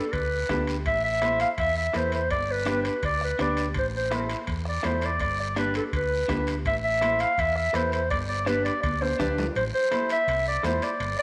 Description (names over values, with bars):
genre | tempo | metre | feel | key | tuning
latin, cumbia | 166 BPM | 4/4 | straight | A minor | A4 = 440 Hz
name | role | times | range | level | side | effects
warm clarinet | melody | 0.0-11.2 s | A4 to F5 | -28 LUFS | equal | none
electric guitar at the edge of break-up | accompaniment | 0.0-10.9 s | D4 to D5 | -35 LUFS | equal | none
fingered electric bass | bass | 0.1-11.1 s | G1 to E2 | -34 LUFS | equal | none
bombo | percussion | 0.1-9.4 s | none | -38 LUFS | equal | none
congas | percussion | 0.1-11.2 s | none | -39 LUFS | equal | none
guiro | percussion | 0.1-11.2 s | none | -45 LUFS | equal | none
timbales | percussion | 0.1-11.2 s | none | -40 LUFS | equal | none
room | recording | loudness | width
wet echo chamber reverb, RT60 1.7 s | none | -26 LUFS | mono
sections
0.0-9.6 A section; 9.6-11.2 B section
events
drum fill 8.8-9.6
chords
0.0 G; 0.9 Am; 2.3 G; 3.8 Am; 5.2 G; 6.7 Am; 8.1 G; 9.6 Am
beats
0.13 0.49 | 0.86 1.22 1.58 1.94 | 2.31 2.67 3.03 3.39 | 3.76 4.12 4.48 4.84 | 5.21 5.57 5.93 6.29 | 6.66 7.02 7.38 7.75 | 8.11 8.47 8.83 9.20 | 9.56 9.92 10.28 10.64 | 11.01